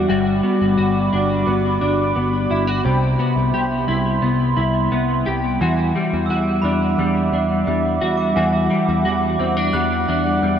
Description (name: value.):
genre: dream pop.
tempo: 87 BPM.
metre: 4/4.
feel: straight.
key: E minor.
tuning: A4 = 439 Hz.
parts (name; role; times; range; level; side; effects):
warbly tape-like pad; sustained chords; 0.0-10.6 s; G3 to D6; -21 LUFS; right 3 dB; chorus, built-in reverb.
clean electric guitar; arpeggios; 0.0-10.6 s; C3 to G4; -19 LUFS; left 2 dB; ensemble chorus, digital delay.
picked electric bass; bass; 0.0-10.6 s; G1 to E2; -24 LUFS; equal; none.
glockenspiel with hard plastic mallets; texture; 6.3-10.6 s; B5 to F#6; -29 LUFS; right 6 dB; digital delay.
room: wet huge ambient reverb, RT60 5.1 s.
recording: worn, warbling old tape, cassette tape, warbly pitch drift.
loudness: -16 LUFS.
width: side -8 dB against mid.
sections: 0.0-10.6 A section.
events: none.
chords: 0.1 Gmaj7; 2.8 Cmaj7; 5.6 Em9.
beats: | 0.09 0.78 1.47 2.16 | 2.85 3.54 4.23 4.92 | 5.61 6.30 6.99 7.67 | 8.37 9.05 9.74 10.43.